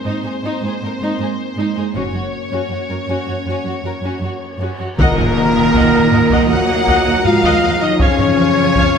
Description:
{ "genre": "cinematic, epic orchestral film score", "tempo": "79 BPM", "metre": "4/4", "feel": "straight", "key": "Eb dorian", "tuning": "A4 = 440 Hz", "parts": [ { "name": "rich symphonic violin section", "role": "melody", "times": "0.0-9.0 s", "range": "Bb4 to Gb5", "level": "-24 LUFS", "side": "left 5 dB", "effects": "none" }, { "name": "rich symphonic viola section", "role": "accompaniment", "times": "0.0-9.0 s", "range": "Eb4 to Gb5", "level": "-24 LUFS", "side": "equal", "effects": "none" }, { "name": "dark French horn section", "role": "sustained chords", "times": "0.0-9.0 s", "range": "Bb3 to Gb4", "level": "-19 LUFS", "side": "left 2 dB", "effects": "none" }, { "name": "warm chamber cello section", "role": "bass", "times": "0.0-9.0 s", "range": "Gb2 to Bb3", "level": "-22 LUFS", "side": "right 3 dB", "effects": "none" }, { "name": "warm chamber violin section", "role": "second line", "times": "0.1-9.0 s", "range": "Db4 to Gb5", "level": "-25 LUFS", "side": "left 2 dB", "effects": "none" }, { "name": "rich studio double bass section", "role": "bass", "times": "2.0-9.0 s", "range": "Gb1 to F2", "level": "-24 LUFS", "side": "right 3 dB", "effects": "none" }, { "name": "cymbal swell and tam-tam", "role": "percussion", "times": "2.0-8.0 s", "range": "none", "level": "-27 LUFS", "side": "equal", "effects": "none" }, { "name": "flute section", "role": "second line", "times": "5.0-9.0 s", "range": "Bb4 to Gb5", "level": "-26 LUFS", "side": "left 1 dB", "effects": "none" }, { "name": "clear trombone section", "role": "sustained chords", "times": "5.0-9.0 s", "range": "Bb2 to Gb3", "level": "-25 LUFS", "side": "right 4 dB", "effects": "none" }, { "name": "rich symphonic string section", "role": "sustained chords", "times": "5.0-9.0 s", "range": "Eb4 to Bb5", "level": "-26 LUFS", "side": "equal", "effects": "none" }, { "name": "bright trumpet section", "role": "stabs", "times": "5.0-9.0 s", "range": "Bb4 to Gb5", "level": "-21 LUFS", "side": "equal", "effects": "none" }, { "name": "taiko ensemble", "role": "drums", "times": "5.0-9.0 s", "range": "none", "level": "-20 LUFS", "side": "equal", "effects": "none" }, { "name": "timpani", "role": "percussion", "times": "5.0-6.1 s", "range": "Eb3", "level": "-25 LUFS", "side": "left 1 dB", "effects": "none" }, { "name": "impact", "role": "sound effects", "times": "5.0-8.0 s", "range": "none", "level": "-29 LUFS", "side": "equal", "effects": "none" } ], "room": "wet scoring stage reverb, RT60 1.9 s", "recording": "none", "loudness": "-14 LUFS", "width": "side -7 dB against mid", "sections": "0.0-5.0 A section; 5.0-9.0 B section", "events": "band accent 5.0-5.7; impact 5.0-8.0", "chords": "0.0 Abadd9; 2.0 Gb; 5.0 Ebm; 8.0 Db/F" }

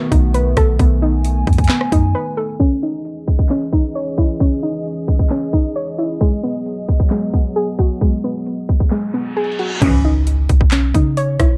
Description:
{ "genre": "hip hop, trap", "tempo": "133 BPM", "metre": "4/4", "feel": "half-time", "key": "C# minor", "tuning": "A4 = 440 Hz", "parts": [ { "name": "dark analog pad", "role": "sustained chords", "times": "0.0-9.8 s", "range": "D#3 to G#5", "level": "-27 LUFS", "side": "equal", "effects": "chorus" }, { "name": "soft round pluck", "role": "arpeggios", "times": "0.0-11.6 s", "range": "G#3 to C#5", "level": "-22 LUFS", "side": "equal", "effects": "chorus, tape echo" }, { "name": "clean 808-style bass", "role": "bass", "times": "0.1-2.1, 9.8-11.6 s", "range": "B1 to C#3", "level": "-18 LUFS", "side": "equal", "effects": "none" }, { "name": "trap drum kit", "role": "drums", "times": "0.1-11.5 s", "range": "crash cymbal, handclaps, hi-hat, kick drum, rim click, snare drum", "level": "-18 LUFS", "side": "equal", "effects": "overdrive" }, { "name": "reverse cymbal and impact", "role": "sound effects", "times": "9.1-11.6 s", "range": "none", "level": "-31 LUFS", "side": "equal", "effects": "none" }, { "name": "clear studio string section", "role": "stabs", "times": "9.8-10.2 s", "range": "G#2 to E3", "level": "-27 LUFS", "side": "equal", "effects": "none" } ], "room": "light reverb, digital ambience", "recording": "dark, warm production, low-pass filter", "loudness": "-17 LUFS", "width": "mono", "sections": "0.0-2.6 A section; 2.6-9.8 B section; 9.8-11.6 A section", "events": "break 2.1-2.6, 8.9-9.8; filter sweep 2.6-9.8; reverse cymbal 9.1-9.8; impact 9.8-11.6", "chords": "0.0 B7; 2.6 C#madd9; 6.2 G#m7; 9.8 C#madd9" }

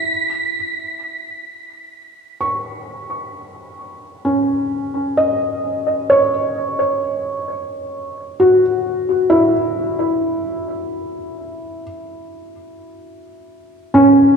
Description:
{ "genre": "ambient", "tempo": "65 BPM", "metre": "3/4", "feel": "straight", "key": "unclear", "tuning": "A4 = 439 Hz", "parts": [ { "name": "felt-muted upright piano", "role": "arpeggios", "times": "0.0-14.4 s", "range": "C#4 to C#6", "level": "-16 LUFS", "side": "equal", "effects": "analog delay" } ], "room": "wet echo chamber reverb, RT60 2.7 s", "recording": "echo-heavy mix", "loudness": "-16 LUFS", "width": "side -6 dB against mid", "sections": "0.1-14.4 A section", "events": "fade-in on felt piano 0.1-14.4", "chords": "0.1 C#madd9" }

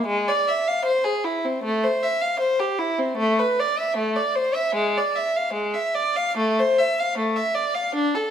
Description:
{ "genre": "classical, baroque-style suite movement for unaccompanied violin", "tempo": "76 BPM", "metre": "4/4", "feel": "rubato", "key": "A minor", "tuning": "A4 = 440 Hz", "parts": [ { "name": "warm violin", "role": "solo", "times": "0.0-8.3 s", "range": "G#3 to F5", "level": "-20 LUFS", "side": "equal", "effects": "none" } ], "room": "wet stone room reverb, RT60 1.2 s", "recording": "heard from further back in the room", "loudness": "-20 LUFS", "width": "side -9 dB against mid", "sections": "0.0-8.3 A section", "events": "none", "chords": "none" }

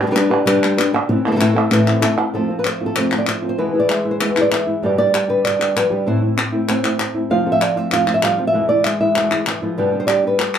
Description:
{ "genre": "flamenco", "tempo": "194 BPM", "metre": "4/4", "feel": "straight", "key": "A minor", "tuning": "A4 = 440 Hz", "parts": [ { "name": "flamenco guitar", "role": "melody", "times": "0.0-10.6 s", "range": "A2 to F5", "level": "-17 LUFS", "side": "equal", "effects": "slapback echo" }, { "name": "flamenco guitar", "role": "stabs", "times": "0.0-10.4 s", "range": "E2 to G4", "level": "-22 LUFS", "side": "right 1 dB", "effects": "none" }, { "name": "palmas hand claps", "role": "percussion", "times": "0.0-10.6 s", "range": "none", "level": "-21 LUFS", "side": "left 1 dB", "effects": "none" } ], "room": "wet small room ambience, RT60 0.5 s", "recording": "heard from further back in the room", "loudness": "-15 LUFS", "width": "side -8 dB against mid", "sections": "0.0-2.3 A section; 2.3-10.6 B section", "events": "none", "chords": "0.0 G; 1.1 Am; 2.3 F; 3.6 E; 4.8 G; 6.1 Am; 7.3 F; 8.5 E; 9.8 G" }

